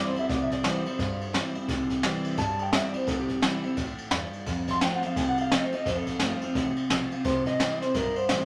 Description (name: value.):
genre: rockabilly.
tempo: 172 BPM.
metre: 4/4.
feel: swing 61% on 8ths.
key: C major.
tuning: A4 = 440 Hz.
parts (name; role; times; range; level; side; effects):
electric guitar through a small old amp; melody; 0.0-8.4 s; G4 to C6; -32 LUFS; equal; none.
picked steel-string acoustic guitar; accompaniment; 0.0-8.4 s; F2 to F4; -32 LUFS; equal; none.
upright bass; bass; 0.2-8.4 s; G1 to G2; -39 LUFS; equal; none.
jazz brush drum kit; drums; 0.2-8.4 s; kick drum, ride cymbal, snare drum; -32 LUFS; equal; none.
room: moderate studio reverb, RT60 0.9 s.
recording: none.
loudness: -27 LUFS.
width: mono.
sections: 0.0-8.4 A section.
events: clean electric guitar solo 0.0-8.4.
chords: 0.0 C; 4.5 F; 7.3 C.